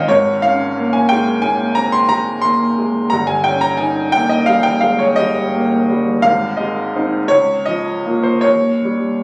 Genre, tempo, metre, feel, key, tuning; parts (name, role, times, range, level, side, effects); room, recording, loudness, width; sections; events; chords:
classical, romantic nocturne for solo piano; 47-61 BPM (dotted quarters); 9/8; rubato; A4 = 441 Hz
clear grand piano; solo; 0.0-9.2 s; G1 to C6; -16 LUFS; equal
light reverb; recorded on a phone in the room, club reverb, compression; -16 LUFS; mono
0.0-9.2 A section
0.1 Bbm7/Ab; 3.1 Eb7/G; 6.3 Ab; 7.3 Bbm/Db; 8.5 Eb7